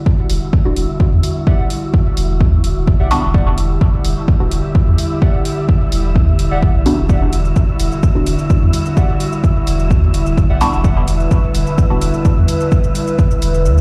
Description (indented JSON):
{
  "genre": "dub techno",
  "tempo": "128 BPM",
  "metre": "4/4",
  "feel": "straight",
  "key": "E minor",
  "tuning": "A4 = 441 Hz",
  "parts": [
    { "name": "airy breathy pad", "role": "sustained chords", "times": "0.0-13.8 s", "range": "D3 to B4", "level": "-23 LUFS", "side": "equal", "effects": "chorus, sidechain pumping" },
    { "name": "wind-like tuned noise texture", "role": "texture", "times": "0.0-13.8 s", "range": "E5", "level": "-32 LUFS", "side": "equal", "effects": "built-in reverb, sidechain pumping" },
    { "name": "electronic kick drum", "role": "drums", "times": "0.1-13.3 s", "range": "none", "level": "-16 LUFS", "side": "equal", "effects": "overdrive" },
    { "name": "warm sub bass", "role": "bass", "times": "0.3-13.8 s", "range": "D1 to E2", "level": "-18 LUFS", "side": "equal", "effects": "sidechain pumping" },
    { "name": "electronic hi-hat and shaker", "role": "drums", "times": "0.3-13.8 s", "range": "none", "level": "-32 LUFS", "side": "equal", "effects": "none" },
    { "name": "filtered dub chord stab", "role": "stabs", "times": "0.7-12.1 s", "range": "G3 to F#4", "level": "-24 LUFS", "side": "equal", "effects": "phaser, sidechain pumping, dub echo" },
    { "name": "warbly lo-fi synth keys", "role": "riff", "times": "1.5-11.0 s", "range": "G4 to F#5", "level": "-31 LUFS", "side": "equal", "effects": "chorus, sidechain pumping, dub echo" }
  ],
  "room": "light reverb, digital ambience",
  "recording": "played on a big sound system in a bare room, large studio reverb, vinyl crackle",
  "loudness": "-15 LUFS",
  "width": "mono",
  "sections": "0.0-13.8 A section",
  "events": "kick drops out 13.7",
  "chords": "0.0 Em9"
}